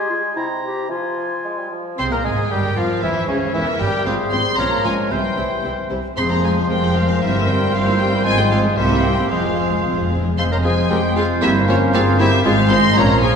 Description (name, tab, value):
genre	quick classical-period movement for symphony orchestra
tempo	115 BPM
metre	2/4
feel	straight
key	F minor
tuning	A4 = 438 Hz
part	clear oboe	second line	0.0-13.4 s	Db4 to Bb5	-26 LUFS	equal	none
part	mellow silver concert flute	second line	0.0-13.4 s	F4 to C6	-28 LUFS	equal	none
part	warm clarinet	second line	0.0-13.4 s	Db4 to Db5	-26 LUFS	equal	none
part	mellow bassoon	accompaniment	0.0-13.4 s	C3 to C4	-26 LUFS	right 1 dB	none
part	warm studio violin section	melody	2.0-13.4 s	Db5 to C6	-23 LUFS	left 2 dB	none
part	dark studio violin section	second line	2.0-13.3 s	C4 to F5	-28 LUFS	left 2 dB	none
part	dark studio viola section	accompaniment	2.0-13.3 s	Db3 to E4	-26 LUFS	right 2 dB	none
part	dark French horn section	sustained chords	2.0-13.4 s	Db3 to Db4	-25 LUFS	left 3 dB	none
part	warm studio cello section	bass	2.0-13.4 s	Db2 to C3	-23 LUFS	right 1 dB	none
part	warm studio double bass section	bass	2.0-13.4 s	E1 to Db2	-24 LUFS	right 1 dB	none
part	timpani	percussion	6.2-6.9, 9.3-10.3 s	F2	-28 LUFS	left 2 dB	none
room	wet concert hall reverb, RT60 2.0 s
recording	recorded in a church or concert hall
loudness	-16 LUFS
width	side -6 dB against mid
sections	0.0-2.0 A section; 2.0-10.4 B section; 10.4-13.4 B section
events	timpani fill 9.3-10.4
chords	0.4 C7; 0.9 Fm; 3.0 C7; 4.1 Fm/Ab; 4.6 Bbm; 5.1 C; 6.2 Fm; 7.2 C7/G; 8.3 Fm/Ab; 8.8 C7; 9.3 Fm; 11.4 C5/G; 12.5 Fm/Ab